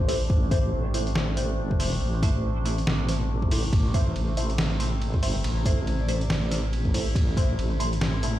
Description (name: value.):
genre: deep dubstep.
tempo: 140 BPM.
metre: 4/4.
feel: swing 59% on 16ths, half-time.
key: A minor.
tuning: A4 = 440 Hz.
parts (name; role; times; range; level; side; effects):
breathy flute-like synth lead; melody; 0.0-0.2, 6.0-6.6 s; C5 to D5; -39 LUFS; left 4 dB; tremolo, wide subtle chorus, dub echo.
overtone-sweeping drone; sustained chords; 0.0-8.4 s; C3 to E4; -35 LUFS; right 1 dB; chorus, built-in reverb, phaser.
filtered dub chord stab; stabs; 0.0-8.4 s; A3 to C5; -33 LUFS; right 1 dB; phaser, wide subtle chorus, dub echo.
deep soft wobble bass; bass; 0.0-8.4 s; A1; -26 LUFS; equal; chorus.
electronic kick drum; drums; 0.0-7.5 s; none; -23 LUFS; equal; none.
trip hop sampler-style drum kit; drums; 0.1-8.3 s; hi-hat, ride cymbal, snare drum; -31 LUFS; equal; none.
room: light reverb, digital ambience.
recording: played on a big sound system in a bare room, stone room reverb.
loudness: -22 LUFS.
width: side -14 dB against mid.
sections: 0.0-8.4 A section.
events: none.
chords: 0.0 Am.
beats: | 0.30 0.73 1.16 1.58 | 2.01 2.44 2.87 3.30 | 3.73 4.16 4.58 5.01 | 5.44 5.87 6.30 6.73 | 7.16 7.58 8.01.